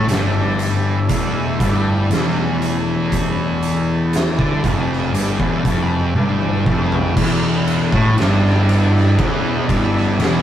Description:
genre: stoner and doom metal.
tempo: 59 BPM.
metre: 4/4.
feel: straight.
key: E phrygian.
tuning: A4 = 440 Hz.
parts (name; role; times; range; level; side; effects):
overtone-sweeping drone; sustained chords; 0.0-10.4 s; E3 to E4; -26 LUFS; equal; chorus, built-in reverb.
thick fuzz guitar; riff; 0.0-10.4 s; E2 to D3; -18 LUFS; left 2 dB; distortion.
thick fuzz guitar; riff; 0.0-10.4 s; E2 to D3; -22 LUFS; right 4 dB; distortion.
fuzz picked electric bass; bass; 0.0-10.4 s; E1 to D2; -26 LUFS; equal; overdrive.
oversized low-tuned drum kit; drums; 0.1-10.4 s; crash cymbal, hi-hat, kick drum, ride cymbal, snare drum, toms; -21 LUFS; equal; none.
room: moderate booth ambience, RT60 0.2 s.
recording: rough rehearsal-room recording.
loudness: -15 LUFS.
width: side -10 dB against mid.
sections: 0.0-7.2 A section; 7.2-10.4 B section.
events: drum fill 6.2-7.2.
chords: 0.0 Em.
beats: 0.07 1.08 2.10 | 3.11 4.13 5.14 6.15 | 7.17 8.18 9.19 10.20.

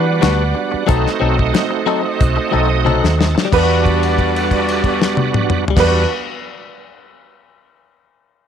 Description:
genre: straight-eighth soul blues.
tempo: 91 BPM.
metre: 4/4.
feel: straight.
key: E minor.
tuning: A4 = 440 Hz.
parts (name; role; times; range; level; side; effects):
bright upright piano; second line; 0.0-6.1 s; D4 to B4; -22 LUFS; right 9 dB; none.
bright tonewheel organ; accompaniment; 0.0-6.0 s; G3 to A5; -20 LUFS; right 12 dB; slow rotary speaker, overdrive, chorus vibrato.
clear horn section; sustained chords; 0.0-6.0 s; C4 to F#5; -24 LUFS; equal; none.
direct-recorded clean electric guitar; stabs; 0.0-6.1 s; F#3 to A4; -21 LUFS; left 10 dB; none.
vintage muted fingered electric bass; bass; 0.0-6.0 s; B1 to E3; -18 LUFS; equal; none.
damped 70s drum kit; drums; 0.2-5.9 s; crash cymbal, hi-hat, kick drum, snare drum, toms; -18 LUFS; left 3 dB; none.
room: light reverb, small room ambience.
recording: 1960s-style stereo with parts hard left and right.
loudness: -13 LUFS.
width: side -8 dB against mid.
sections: 0.0-3.5 A section; 3.5-6.2 B section.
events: tonewheel organ fill 2.2-3.5; drum fill 2.9-3.5; held note 3.5-5.8.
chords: 0.0 Em9; 0.9 B7b9; 3.5 Em9.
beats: 0.22 | 0.88 1.54 2.20 2.86 | 3.52 4.18 4.84 5.50.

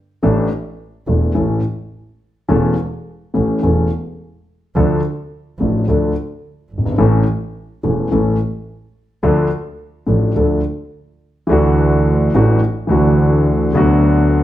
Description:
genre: tango.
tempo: 107 BPM.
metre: 4/4.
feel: rubato.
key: D harmonic minor.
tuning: A4 = 440 Hz.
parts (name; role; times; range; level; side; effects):
dark concert grand piano; accompaniment; 0.2-14.4 s; E1 to A4; -14 LUFS; left 1 dB; none.
dark double bass; bass; 0.2-14.4 s; E1 to D2; -18 LUFS; right 3 dB; none.
room: moderate large studio reverb, RT60 0.9 s.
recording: none.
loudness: -14 LUFS.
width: side -13 dB against mid.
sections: 0.0-11.5 A section; 11.5-14.4 B section.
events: none.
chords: 0.2 Asus4; 1.4 A; 4.8 Dm; 7.0 A; 9.2 Dm; 11.5 Dadd9; 13.8 Bm/D.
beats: | 0.23 0.79 1.36 1.93 | 2.50 3.06 3.63 4.19 | 4.75 5.32 5.88 6.44 | 7.00 7.55 8.11 8.67 | 9.23 9.80 10.36 10.93 | 11.50 12.06 12.63 13.19 | 13.75 14.31.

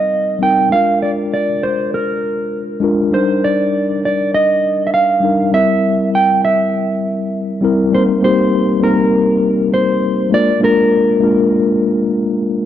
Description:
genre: soul.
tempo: 100 BPM.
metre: 4/4.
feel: straight.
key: C minor.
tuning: A4 = 437 Hz.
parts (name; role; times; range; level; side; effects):
mellow electric guitar; melody; 0.0-12.4 s; Bb4 to G5; -16 LUFS; right 1 dB; spring reverb.
mellow tine electric piano; accompaniment; 0.0-12.7 s; G3 to Bb4; -15 LUFS; left 1 dB; medium stereo tremolo.
room: light reverb.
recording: dry, close 1970s-style studio recording.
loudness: -12 LUFS.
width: side -11 dB against mid.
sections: 0.0-7.9 A section; 7.9-12.7 B section.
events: none.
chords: 0.0 Cm7; 0.7 Bb7; 3.1 Ebmaj7; 5.5 C7; 7.9 Cm7; 10.3 Bb7.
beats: 0.12 | 0.72 1.32 1.92 2.52 | 3.12 3.72 4.32 4.92 | 5.52 6.12 6.72 7.32 | 7.92 8.52 9.12 9.72 | 10.32 10.92 11.52 12.12.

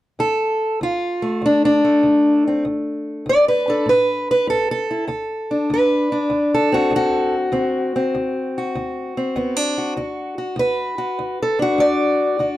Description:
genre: acoustic country blues, solo or duo.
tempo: 98 BPM.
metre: 4/4.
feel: swing 68% on 8ths.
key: D mixolydian.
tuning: A4 = 440 Hz.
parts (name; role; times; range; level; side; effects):
fingerpicked steel-string acoustic guitar; solo; 0.2-12.6 s; D2 to D5; -17 LUFS; equal; none.
room: light reverb.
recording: dark, warm production.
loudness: -17 LUFS.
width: side -15 dB against mid.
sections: 0.2-5.1 A section; 5.1-12.6 B section.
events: none.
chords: 0.2 D5; 3.9 A5; 5.1 D7.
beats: | 0.19 0.80 1.42 2.03 | 2.64 3.26 3.87 4.48 | 5.09 5.70 6.31 6.92 | 7.53 8.14 8.74 9.35 | 9.96 10.57 11.17 11.78 | 12.39.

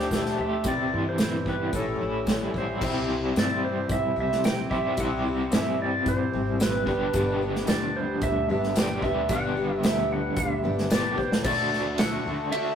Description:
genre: folk rock and heartland rock.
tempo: 111 BPM.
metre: 4/4.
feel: straight.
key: unclear.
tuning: A4 = 439 Hz.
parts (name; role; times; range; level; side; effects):
clean lap steel guitar; melody; 0.0-12.8 s; A4 to G5; -29 LUFS; right 2 dB; none.
picked twelve-string acoustic guitar; accompaniment; 0.0-12.8 s; G2 to G4; -31 LUFS; left 4 dB; none.
accordion; sustained chords; 0.0-12.8 s; A3 to C5; -41 LUFS; right 1 dB; none.
crunchy overdriven guitar; riff; 0.0-12.8 s; G2 to G4; -29 LUFS; left 1 dB; tremolo.
upright bass; bass; 0.0-12.5 s; G1 to G2; -34 LUFS; equal; none.
unplugged drum kit; drums; 0.1-12.7 s; crash cymbal, hi-hat, kick drum, ride cymbal, snare drum; -28 LUFS; right 1 dB; none.
tambourine; percussion; 7.7-12.1 s; none; -45 LUFS; right 5 dB; none.
room: moderate stone room reverb, RT60 1.0 s.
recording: rough rehearsal-room recording, tube saturation.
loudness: -23 LUFS.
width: side -8 dB against mid.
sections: 0.0-2.8 A section; 2.8-11.5 B section; 11.5-12.8 C section.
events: drum fill 11.2.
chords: 0.0 Dsus4; 0.7 Cmaj7; 1.7 A7; 2.8 C; 6.9 G; 11.5 D.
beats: 0.12 | 0.66 1.21 1.75 2.29 | 2.83 3.37 3.91 4.45 | 4.99 5.53 6.07 6.60 | 7.14 7.68 8.22 8.76 | 9.30 9.84 10.38 10.91 | 11.45 11.99 12.53.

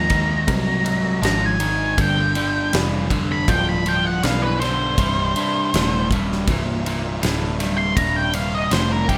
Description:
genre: blues rock power trio and southern rock.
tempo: 80 BPM.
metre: 4/4.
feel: straight.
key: C minor.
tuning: A4 = 441 Hz.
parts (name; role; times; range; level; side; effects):
octave-fuzz lead guitar; melody; 0.0-9.2 s; G4 to C6; -24 LUFS; equal; distortion.
overdriven electric guitar; riff; 0.0-9.2 s; C2 to F#3; -25 LUFS; equal; none.
picked electric bass; bass; 0.0-9.2 s; C1 to Eb2; -27 LUFS; equal; none.
huge arena drum kit; drums; 0.1-9.2 s; kick drum, ride cymbal, snare drum; -27 LUFS; equal; none.
room: light reverb.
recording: none.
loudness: -20 LUFS.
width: mono.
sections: 0.0-9.2 A section.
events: lead electric guitar solo 0.0-9.2.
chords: 0.0 Ab; 2.0 G7; 5.0 Cm7.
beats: 0.49 1.24 | 1.99 2.74 3.49 4.24 | 4.99 5.74 6.48 7.23 | 7.98 8.72.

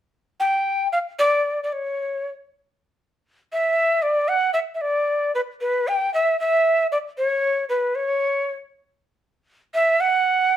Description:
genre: andean folk.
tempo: 77 BPM (dotted quarters).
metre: 6/8.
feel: straight.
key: E minor.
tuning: A4 = 440 Hz.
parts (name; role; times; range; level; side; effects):
breathy quena; solo; 0.4-10.6 s; B4 to G5; -19 LUFS; equal; none.
room: moderate studio reverb, RT60 0.6 s.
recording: none.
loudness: -19 LUFS.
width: side -11 dB against mid.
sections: 0.0-5.6 A section; 5.6-10.6 B section.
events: none.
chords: none.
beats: 0.14 | 0.92 1.70 | 2.48 3.27 | 4.04 4.82 | 5.60 6.38 | 7.16 7.93 | 8.71 9.48 | 10.26.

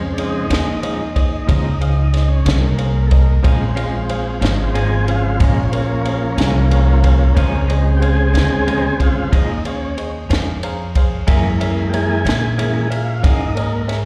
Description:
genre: slow blues.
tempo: 61 BPM (dotted quarters).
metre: 12/8.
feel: straight.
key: Bb minor.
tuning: A4 = 439 Hz.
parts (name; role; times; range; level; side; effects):
bright baby grand piano; accompaniment; 0.0-14.1 s; Ab4 to Bb5; -30 LUFS; equal; slapback echo.
semi-hollow electric guitar; accompaniment; 0.0-13.4 s; Gb2 to Db4; -29 LUFS; equal; tremolo, slapback echo.
tonewheel organ; sustained chords; 0.0-13.9 s; Db3 to Ab4; -24 LUFS; equal; slow rotary speaker.
upright bass; bass; 0.0-14.1 s; Ab1 to Bb2; -19 LUFS; equal; none.
compact cocktail drum kit; drums; 0.2-14.0 s; kick drum, ride cymbal, snare drum; -22 LUFS; equal; none.
room: little or no reverb.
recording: live gig heard through the venue's PA, recital hall reverb.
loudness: -17 LUFS.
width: mono.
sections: 0.0-14.1 A section.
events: tonewheel organ solo 0.0-14.1; grand piano fill 10.3-11.3.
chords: 0.0 Bbm7; 11.3 Gb7.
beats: 0.50 1.48 2.46 | 3.44 4.42 5.40 6.38 | 7.36 8.34 9.32 10.30 | 11.28 12.26 13.24.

